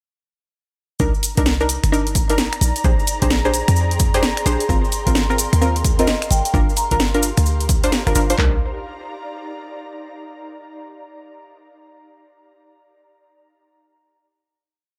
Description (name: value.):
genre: UK garage, two-step garage.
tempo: 130 BPM.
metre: 4/4.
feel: swing 63% on 16ths.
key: C minor.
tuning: A4 = 441 Hz.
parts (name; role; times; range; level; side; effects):
warm analog pad; sustained chords; 1.0-8.4 s; Bb5; -32 LUFS; equal; chorus, sidechain pumping.
punchy chord stab; stabs; 1.0-8.6 s; C4 to C5; -25 LUFS; equal; chorus, dub echo.
short 808-style bass; bass; 1.0-8.6 s; F1 to F2; -22 LUFS; equal; none.
punchy analog drum machine; drums; 1.0-8.5 s; handclaps, kick drum, toms; -23 LUFS; equal; studio reverb.
cabasa; percussion; 1.0-8.4 s; none; -30 LUFS; equal; none.
ethereal airy pad; texture; 1.8-10.2 s; Eb4 to C6; -34 LUFS; equal; ensemble chorus, built-in reverb, sidechain pumping.
house drum kit; drums; 1.2-8.4 s; finger snaps, hi-hat, snare drum; -25 LUFS; equal; studio reverb.
marimba with soft mallets; melody; 6.0-7.0 s; Eb5 to Bb5; -28 LUFS; equal; dub echo.
room: light reverb, digital ambience.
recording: none.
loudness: -18 LUFS.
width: mono.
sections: 1.0-8.4 groove; 8.4-10.2 final chord.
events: none.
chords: 1.0 Cm9; 2.6 Bb13; 4.7 Ab69; 6.5 Gm7; 8.4 Cm9 (rootless).